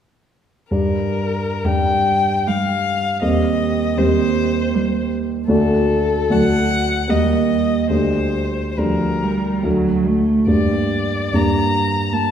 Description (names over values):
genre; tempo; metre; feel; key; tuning
classical, slow romantic movement for piano quartet; 62-80 BPM; 3/4; rubato; G minor; A4 = 441 Hz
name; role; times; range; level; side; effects
rich violin; melody; 0.7-12.3 s; A4 to Bb5; -22 LUFS; left 4 dB; none
warm grand piano; accompaniment; 0.7-12.3 s; D2 to G4; -18 LUFS; right 1 dB; none
dark cello; second line; 1.7-12.3 s; F3 to Bb3; -23 LUFS; right 2 dB; none
room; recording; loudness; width
wet recital hall reverb, RT60 1.6 s; heard from further back in the room; -16 LUFS; side -8 dB against mid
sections
0.7-12.3 A section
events
none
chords
0.7 Gm; 3.2 Cm/Eb; 5.5 D; 7.1 Eb; 7.9 Gm/D; 9.6 D; 10.5 Gm